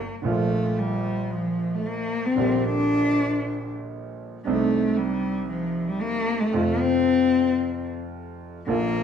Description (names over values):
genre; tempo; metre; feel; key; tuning
tango; 114 BPM; 4/4; rubato; Bb major; A4 = 435 Hz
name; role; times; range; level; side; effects
warm cello; second line; 0.0-9.0 s; F3 to D4; -23 LUFS; left 3 dB; none
clear concert grand piano; accompaniment; 0.2-9.0 s; Bb1 to G4; -27 LUFS; right 4 dB; none
room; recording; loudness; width
wet club reverb, RT60 0.8 s; heard from further back in the room; -21 LUFS; side -7 dB against mid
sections
0.2-9.0 A section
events
cello solo 0.2-9.0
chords
0.2 Bb; 2.4 Gm/Bb; 4.5 Cmadd9; 6.5 F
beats
| 0.23 0.77 1.31 1.84 | 2.36 2.89 3.42 3.94 | 4.46 4.98 5.50 6.02 | 6.55 7.07 7.60 8.14 | 8.68